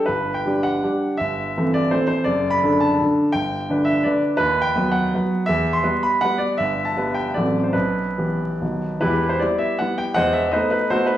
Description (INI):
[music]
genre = classical, romantic triple-time dance for piano with dotted rhythms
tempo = 133-180 BPM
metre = 3/4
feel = rubato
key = G major, E minor from 4.4 s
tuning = A4 = 439 Hz
[part]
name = clear baby grand piano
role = solo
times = 0.0-11.2 s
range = E1 to C6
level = -18 LUFS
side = equal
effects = none
[sound]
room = wet recital hall reverb, RT60 1.4 s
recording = vinyl crackle, studio reverb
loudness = -18 LUFS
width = side -12 dB against mid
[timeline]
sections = 0.1-9.0 A section; 9.0-11.2 B section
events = none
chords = 0.1 G5; 1.2 Am7/G; 2.3 D/F#; 3.3 G; 4.4 B/D#; 5.5 Em; 6.6 G69; 7.3 F#dim/A; 7.7 Em/B; 8.6 B; 9.0 Em; 10.1 B7b9/E